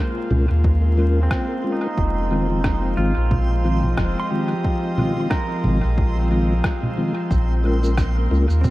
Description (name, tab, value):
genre	ambient dub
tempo	90 BPM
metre	4/4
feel	swing 57% on 16ths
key	unclear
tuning	A4 = 438 Hz
part	airy breathy pad	sustained chords	0.0-8.7 s	F3 to Eb5	-27 LUFS	equal	chorus, vintage 12-bit sampler grit
part	pedal steel guitar	arpeggios	0.0-8.7 s	C4 to C6	-30 LUFS	right 3 dB	dub echo
part	backwards swelling texture	texture	0.0-8.7 s	C4 to C6	-34 LUFS	right 1 dB	built-in reverb
part	mellow tonewheel organ	stabs	0.3-8.5 s	Eb3 to Bb4	-25 LUFS	left 1 dB	chorus vibrato, stopped rotary speaker, dub echo
part	soft dub sub bass	bass	0.3-8.7 s	F1 to Eb2	-19 LUFS	equal	none
part	electronic congas, rim click and shaker	drums	0.3-8.7 s	none	-28 LUFS	equal	overdrive, dub echo
part	electronic kick drum	drums	0.6-8.7 s	none	-23 LUFS	equal	none
room	light reverb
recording	dark, warm production, vinyl crackle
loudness	-18 LUFS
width	side -18 dB against mid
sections	0.0-8.7 A section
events	none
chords	0.0 Bbm7; 2.0 Fm7; 7.3 Bbm7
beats	0.64 1.31 | 1.98 2.64 3.31 3.98 | 4.64 5.31 5.98 6.64 | 7.31 7.98 8.64